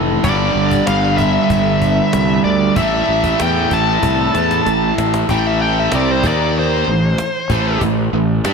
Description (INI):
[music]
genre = hard rock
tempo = 95 BPM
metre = 4/4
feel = straight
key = A minor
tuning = A4 = 440 Hz
[part]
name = overdriven electric guitar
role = riff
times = 0.0-8.5 s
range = G2 to G4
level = -16 LUFS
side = right 1 dB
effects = spring reverb, slapback echo
[part]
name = fuzz fingered electric bass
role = bass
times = 0.0-8.5 s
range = F1 to G2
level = -19 LUFS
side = equal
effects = overdrive
[part]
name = bluesy overdriven lead guitar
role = melody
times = 0.2-7.8 s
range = C5 to A5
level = -19 LUFS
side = left 2 dB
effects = distortion, slapback echo
[part]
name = cajon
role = drums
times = 0.2-8.5 s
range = none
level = -25 LUFS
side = equal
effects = none
[sound]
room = moderate lush hall reverb, RT60 2.4 s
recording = big arena sound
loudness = -13 LUFS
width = side -5 dB against mid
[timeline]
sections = 0.0-5.3 A section; 5.3-8.5 B section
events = drum fill 4.0-5.3; lead electric guitar solo 5.3-8.5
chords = 0.2 G5; 2.8 A5; 5.3 Am; 6.2 D#5; 6.9 Am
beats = | 0.24 0.88 1.51 2.14 | 2.77 3.40 4.03 4.66 | 5.29 5.92 6.56 7.19 | 7.82 8.45